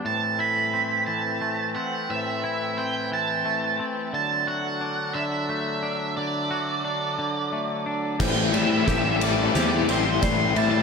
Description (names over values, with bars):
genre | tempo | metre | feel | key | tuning
post-rock | 59 BPM (dotted quarters) | 6/8 | straight | A dorian | A4 = 440 Hz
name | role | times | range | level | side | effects
hand-pumped harmonium | sustained chords | 0.0-10.8 s | E3 to B4 | -34 LUFS | right 2 dB | none
twangy electric guitar | arpeggios | 0.0-10.8 s | A2 to G4 | -29 LUFS | left 2 dB | digital delay
octave-fuzz lead guitar | melody | 0.1-10.8 s | C5 to C6 | -26 LUFS | right 4 dB | distortion, digital delay
felt-muted upright piano | arpeggios | 8.2-10.8 s | A4 to E5 | -34 LUFS | right 7 dB | digital delay
crunchy overdriven guitar | riff | 8.2-10.8 s | A2 to E3 | -25 LUFS | left 15 dB | tremolo
fuzz picked electric bass | bass | 8.2-10.8 s | A1 to A2 | -26 LUFS | equal | overdrive
oversized low-tuned drum kit | drums | 8.2-10.7 s | crash cymbal, kick drum, ride cymbal, snare drum | -26 LUFS | equal | none
room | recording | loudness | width
moderate huge ambient reverb, RT60 6.9 s | none | -22 LUFS | side -5 dB against mid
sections
0.0-8.2 A section; 8.2-10.8 B section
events
build-up 8.2-10.8; drum fill 8.2-10.8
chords
0.1 Am; 4.1 D; 8.2 Am7